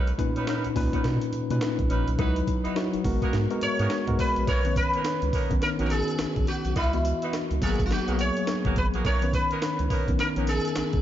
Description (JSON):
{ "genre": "R&B, new jack swing", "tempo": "105 BPM", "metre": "4/4", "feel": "swing 61% on 16ths", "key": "B major", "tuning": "A4 = 441 Hz", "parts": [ { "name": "warm horn section", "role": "stabs", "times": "0.0-10.5 s", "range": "A#3 to B4", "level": "-35 LUFS", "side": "right 4 dB", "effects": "none" }, { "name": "round analog bass", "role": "bass", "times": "0.0-11.0 s", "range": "G#1 to B2", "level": "-28 LUFS", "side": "right 1 dB", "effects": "none" }, { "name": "breakbeat sampler-style drum kit", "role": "drums", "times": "0.1-11.0 s", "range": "hi-hat, kick drum, snare drum, tambourine", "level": "-29 LUFS", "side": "equal", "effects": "none" }, { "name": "mellow tine electric piano", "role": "accompaniment", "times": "0.2-11.0 s", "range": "A#2 to D#5", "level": "-29 LUFS", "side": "left 2 dB", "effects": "medium stereo tremolo" }, { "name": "cowbell", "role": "percussion", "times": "0.5-10.9 s", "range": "none", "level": "-43 LUFS", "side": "right 9 dB", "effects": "none" }, { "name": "sitar", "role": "melody", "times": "3.6-11.0 s", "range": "E4 to C#5", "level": "-28 LUFS", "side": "equal", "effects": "none" } ], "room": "light reverb", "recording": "dark, warm production, nothing above 7.5 kHz", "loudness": "-23 LUFS", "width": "side -12 dB against mid", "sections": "0.0-4.5 A section; 4.5-11.0 B section", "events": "none", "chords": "0.0 Bmaj9; 2.2 C#m11; 3.0 G#m9; 4.5 Bmaj9; 6.8 C#m11; 7.6 G#m9; 9.0 Bmaj9" }